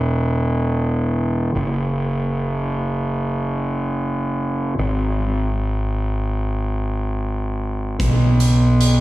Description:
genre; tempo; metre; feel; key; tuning
post-rock; 74 BPM; 4/4; straight; unclear; A4 = 436 Hz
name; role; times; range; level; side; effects
fuzz fingered electric bass; bass; 0.0-9.0 s; E1 to B1; -18 LUFS; equal; overdrive
big rock drum kit; drums; 8.0-9.0 s; hi-hat, kick drum; -22 LUFS; equal; none
room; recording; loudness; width
little or no reverb; studio reverb; -18 LUFS; side -17 dB against mid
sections
0.0-9.0 A section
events
none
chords
none

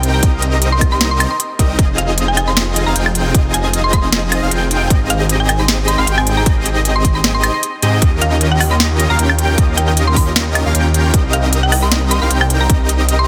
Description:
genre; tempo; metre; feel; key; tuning
future bass; 154 BPM; 4/4; swing 54% on 16ths, half-time; F minor; A4 = 441 Hz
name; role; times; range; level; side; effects
mallet-like synth pluck; melody; 0.0-13.3 s; F5 to C6; -23 LUFS; equal; chorus, sidechain pumping, delay
airy dreamy lead; arpeggios; 0.0-13.3 s; Eb5 to G5; -27 LUFS; equal; chorus, sidechain pumping, delay
dense compressed supersaw; riff; 0.0-13.3 s; C4 to G5; -22 LUFS; equal; sidechain pumping
detuned saw bass; bass; 0.0-13.3 s; F1 to Ab2; -19 LUFS; equal; chorus, tube saturation, sidechain pumping
trap drum kit; drums; 0.0-13.2 s; hi-hat, snare drum, woodblock; -19 LUFS; equal; none
electronic kick drum; drums; 0.2-12.8 s; none; -16 LUFS; equal; none
room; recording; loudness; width
light reverb, digital ambience; dense, heavily limited modern master; -14 LUFS; mono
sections
0.0-13.3 A section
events
none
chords
0.0 Cm7; 1.8 Fm7; 4.9 Abmaj7; 8.0 Eb9; 11.1 Cm7

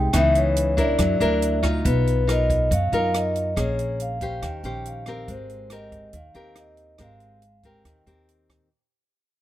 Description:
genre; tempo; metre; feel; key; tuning
bossa nova; 140 BPM; 4/4; straight; Ab major; A4 = 440 Hz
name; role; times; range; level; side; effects
vibraphone with soft mallets; melody; 0.0-8.3 s; B4 to G5; -25 LUFS; left 1 dB; none
nylon-string guitar; accompaniment; 0.0-8.7 s; C3 to C5; -26 LUFS; left 2 dB; none
upright bass; bass; 0.0-8.7 s; Ab1 to Gb2; -25 LUFS; equal; none
compact cocktail drum kit; drums; 0.1-8.6 s; hi-hat, kick drum, rim click; -28 LUFS; right 1 dB; none
room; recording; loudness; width
little or no reverb; none; -20 LUFS; side -13 dB against mid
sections
0.0-8.7 A section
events
fade-out 0.0-8.7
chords
0.1 Dbm9; 1.0 Gbaug7; 1.9 Bmaj7#11; 3.6 Bbm9; 4.4 Eb13; 5.3 Abmaj9

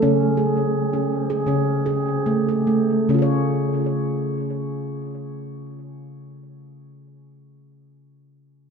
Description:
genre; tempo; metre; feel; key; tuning
world meditative, meditative tuned percussion; 70-86 BPM; 4/4; swing 55% on 16ths; C# major; A4 = 441 Hz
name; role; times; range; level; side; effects
handpan; solo; 0.0-6.6 s; C#3 to C#5; -20 LUFS; right 1 dB; tape echo
room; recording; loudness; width
wet plate reverb, RT60 2.5 s; echo-heavy mix; -19 LUFS; side -6 dB against mid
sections
0.0-3.1 A section; 3.1-6.5 B section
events
slowing down 0.0-3.1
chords
0.0 C#5; 3.1 C#

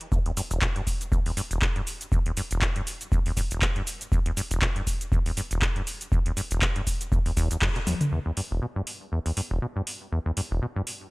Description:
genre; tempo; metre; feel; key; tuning
acid house; 120 BPM; 4/4; swing 56% on 16ths; E minor; A4 = 435 Hz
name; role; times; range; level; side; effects
booming analog drum machine; drums; 0.0-11.0 s; handclaps, hi-hat, shaker, toms; -30 LUFS; equal; none
acid bass, saw; riff; 0.1-10.8 s; E1 to B2; -29 LUFS; equal; tube saturation, analog chorus, sidechain pumping
electronic kick drum; drums; 0.1-7.7 s; none; -26 LUFS; equal; none
room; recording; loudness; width
little or no reverb; dry, gritty hardware recording; -24 LUFS; side -24 dB against mid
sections
0.0-8.1 A section; 8.1-11.1 B section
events
band accent 7.6; drum fill 7.9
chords
none

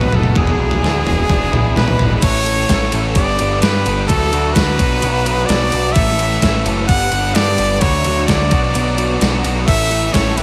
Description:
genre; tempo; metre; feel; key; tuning
indie rock; 129 BPM; 4/4; straight; A mixolydian; A4 = 440 Hz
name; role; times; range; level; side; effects
brilliant trumpet; melody; 0.0-10.4 s; G#4 to F#5; -21 LUFS; equal; slapback echo
string machine, violins; sustained chords; 0.0-10.4 s; D4 to E6; -34 LUFS; equal; none
crunchy overdriven guitar; riff; 0.0-10.4 s; E2 to A4; -24 LUFS; equal; slapback echo
distorted electric guitar; riff; 0.0-10.4 s; E2 to A4; -26 LUFS; equal; overdrive, ensemble chorus, slapback echo
growling picked electric bass; bass; 0.0-10.4 s; E1 to G2; -22 LUFS; equal; overdrive
crisp 8-bit digital drum machine; drums; 0.0-10.4 s; crash cymbal, kick drum, ride cymbal, snare drum, toms; -20 LUFS; equal; overdrive
tube shaker; percussion; 2.2-10.4 s; none; barely audible; none; none
room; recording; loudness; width
moderate lush hall reverb, RT60 1.6 s; big arena sound; -15 LUFS; mono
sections
0.0-2.2 A section; 2.2-10.4 B section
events
none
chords
0.4 E7; 2.2 Aadd9; 3.2 Gadd9; 4.1 Dadd9; 4.8 Bm7; 6.0 Aadd9; 6.9 Gadd9; 7.8 Dadd9; 8.5 Bm7; 9.7 Aadd9

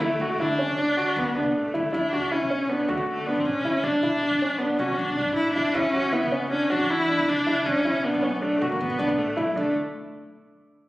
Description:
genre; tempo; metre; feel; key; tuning
contemporary instrumental, chamber music in an uneven meter; 157 BPM; 5/4; straight; D major; A4 = 440 Hz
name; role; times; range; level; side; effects
warm viola; second line; 0.0-9.7 s; A3 to E4; -25 LUFS; equal; none
clear baby grand piano; arpeggios; 0.0-9.7 s; C#4 to F#4; -25 LUFS; equal; none
upright bass; bass; 0.0-9.7 s; A1 to E3; -36 LUFS; equal; none
room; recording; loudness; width
wet recital hall reverb, RT60 1.6 s; recorded on a phone in the room, club reverb; -22 LUFS; side -18 dB against mid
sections
0.0-1.9 A section; 1.9-9.6 B section; 9.6-10.9 C section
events
none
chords
0.0 Dmaj9; 5.8 Esus2; 7.7 Bm9; 9.6 D5

